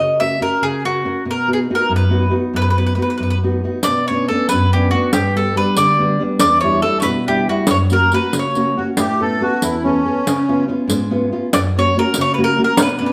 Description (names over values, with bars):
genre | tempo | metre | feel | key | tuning
italian folk, Italian serenade | 94 BPM (dotted quarters) | 6/8 | straight | B major, B minor from 3.8 s | A4 = 441 Hz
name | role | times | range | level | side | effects
mandolin | melody | 0.0-8.8, 11.5-13.1 s | F#4 to E5 | -20 LUFS | equal | none
nylon-string guitar | accompaniment | 0.0-13.1 s | E2 to A#4 | -20 LUFS | equal | none
riq | percussion | 3.8-13.0 s | none | -21 LUFS | equal | none
accordion | second line | 8.8-10.6 s | C#4 to A4 | -21 LUFS | equal | light tremolo tuning
room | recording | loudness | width
wet studio reverb, RT60 0.8 s | band playing live in one room | -17 LUFS | mono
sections
0.0-3.8 A section; 3.8-13.1 B section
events
none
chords
0.0 F#; 1.3 B; 3.8 Bmadd9; 5.1 G; 6.4 Em7; 7.7 F#; 9.0 Aadd9; 10.3 C#7; 11.5 F#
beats
0.61 | 1.25 1.89 | 2.54 3.19 | 3.84 4.49 | 5.14 5.78 | 6.41 7.04 | 7.68 8.33 | 8.97 9.62 | 10.26 10.90 | 11.53 12.16 | 12.79